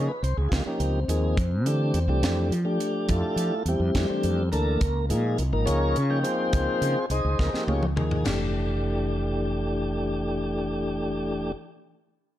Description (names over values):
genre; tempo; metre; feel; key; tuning
electric jazz fusion; 70 BPM (dotted quarters); 6/8; straight; F major; A4 = 440 Hz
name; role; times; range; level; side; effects
mellow tonewheel organ; accompaniment; 0.0-11.5 s; E3 to G5; -26 LUFS; left 1 dB; slow rotary speaker
mellow fretless electric bass; bass; 0.0-11.5 s; F1 to F3; -26 LUFS; equal; none
crisp fusion drum kit; drums; 0.2-8.4 s; crash cymbal, hi-hat, kick drum, snare drum, toms; -30 LUFS; equal; none
room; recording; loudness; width
light reverb, small room ambience; none; -23 LUFS; side -12 dB against mid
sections
0.0-8.2 A section; 8.2-11.7 B section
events
drum fill 7.4-8.2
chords
0.0 Dbmaj9; 1.4 Fmaj9; 4.8 Dbmaj9; 8.2 Fmaj9